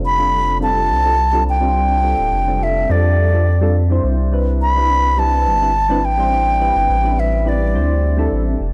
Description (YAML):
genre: sunset chillout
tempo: 105 BPM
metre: 4/4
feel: swing 53% on 16ths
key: F lydian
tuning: A4 = 440 Hz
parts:
  - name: soft electric-piano-like synth keys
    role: accompaniment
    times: 0.0-8.6 s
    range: G3 to C5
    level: -25 LUFS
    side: equal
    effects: chorus, phaser, low-pass filter
  - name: round analog bass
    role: bass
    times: 0.0-8.7 s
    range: D1 to F2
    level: -20 LUFS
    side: equal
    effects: tube saturation
  - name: bright baroque flute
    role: melody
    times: 0.1-8.3 s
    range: D5 to B5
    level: -19 LUFS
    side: equal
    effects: none
room: studio ambience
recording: dry, gritty hardware recording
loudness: -16 LUFS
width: mono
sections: 0.0-8.7 A section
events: filter sweep on synth keys 0.0-8.7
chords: 0.0 F69; 4.0 Cmaj9; 6.0 Am11